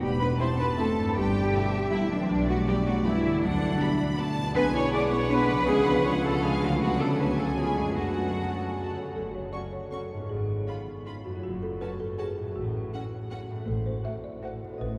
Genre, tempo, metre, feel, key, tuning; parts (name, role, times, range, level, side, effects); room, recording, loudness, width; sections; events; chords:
cinematic, playful, whimsical film cue; 159 BPM; 3/4; straight; E minor, F# minor from 4.6 s; A4 = 440 Hz
clear studio violin section; melody; 0.0-14.7 s; D5 to C#6; -41 LUFS; equal
folk marimba with soft mallets; melody; 0.0-15.0 s; E3 to E5; -34 LUFS; equal
bright small flute group; second line; 0.0-8.7 s; C5 to D6; -38 LUFS; equal
warm clarinet; second line; 0.0-8.7 s; C4 to D5; -38 LUFS; equal
mellow French horn section; sustained chords; 0.0-8.7 s; C3 to D4; -36 LUFS; equal
concert harp; arpeggios; 0.0-15.0 s; E2 to D#5; -36 LUFS; equal
clear studio cello section; bass; 0.0-15.0 s; F#2 to D5; -34 LUFS; equal
rich symphonic double bass section; bass; 0.0-15.0 s; E1 to F#2; -36 LUFS; equal
rich studio violin section; second line; 0.4-14.7 s; E#4 to D6; -46 LUFS; equal
rich studio viola section; accompaniment; 0.4-14.7 s; D3 to B4; -42 LUFS; equal
wet cathedral reverb, RT60 6.8 s; heard from further back in the room; -27 LUFS; mono
0.0-9.1 A section; 9.1-15.0 B section
0.0 Em; 1.2 Em/G; 2.3 Bm; 3.4 Bm/D; 4.6 G#dim/B; 5.7 C#; 6.8 Bm/D; 7.2 F#m/C#; 7.6 C#7b9; 8.0 F#m; 10.3 C#7/G#; 11.4 F#m; 12.6 F#m/A; 13.7 F#dim/A